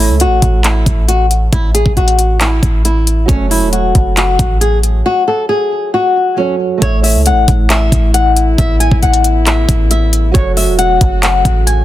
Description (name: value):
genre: hip hop, trap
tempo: 136 BPM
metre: 4/4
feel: half-time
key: A major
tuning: A4 = 436 Hz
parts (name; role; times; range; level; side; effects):
- flamenco guitar; melody; 0.0-11.8 s; C#4 to G#5; -15 LUFS; left 3 dB; digital delay
- felt-muted upright piano; accompaniment; 0.0-11.8 s; F#3 to E5; -21 LUFS; right 8 dB; none
- clean 808-style bass; bass; 0.0-11.8 s; E1 to C#2; -13 LUFS; equal; none
- trap drum kit; drums; 0.2-11.8 s; handclaps, hi-hat, kick drum; -14 LUFS; equal; none
- mellow French horn section; sustained chords; 6.8-11.8 s; C#3 to F#4; -20 LUFS; left 2 dB; stereo widening
room: little or no reverb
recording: dense, heavily limited modern master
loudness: -9 LUFS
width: side -14 dB against mid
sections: 0.0-6.8 A section; 6.8-11.8 B section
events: none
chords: 0.0 A; 3.3 F#m; 6.8 A; 10.3 F#m